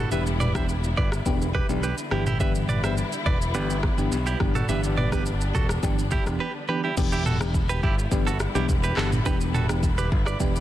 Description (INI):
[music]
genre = afrobeats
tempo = 105 BPM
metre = 4/4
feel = straight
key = E minor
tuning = A4 = 442 Hz
[part]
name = FM electric piano with auto-pan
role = accompaniment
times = 0.0-10.6 s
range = E3 to G4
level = -30 LUFS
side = left 1 dB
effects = phaser
[part]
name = warm studio string section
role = sustained chords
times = 0.0-10.6 s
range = D3 to E4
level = -34 LUFS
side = left 2 dB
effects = none
[part]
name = direct-recorded clean electric guitar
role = riff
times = 0.0-10.4 s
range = E4 to E5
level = -30 LUFS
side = right 5 dB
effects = tape echo
[part]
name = modern bright picked electric bass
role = bass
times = 0.0-10.6 s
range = E1 to B1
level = -27 LUFS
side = equal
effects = none
[part]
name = afro-pop drum kit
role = drums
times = 0.1-10.6 s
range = crash cymbal, handclaps, kick drum, rim click, shaker, toms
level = -26 LUFS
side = equal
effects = vintage 12-bit sampler grit, soft clipping on snare
[sound]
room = light reverb, digital ambience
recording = dense, heavily limited modern master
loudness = -22 LUFS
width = side -13 dB against mid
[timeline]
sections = 0.0-7.0 A section; 7.0-10.6 B section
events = break 6.4-7.0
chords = 0.0 Em7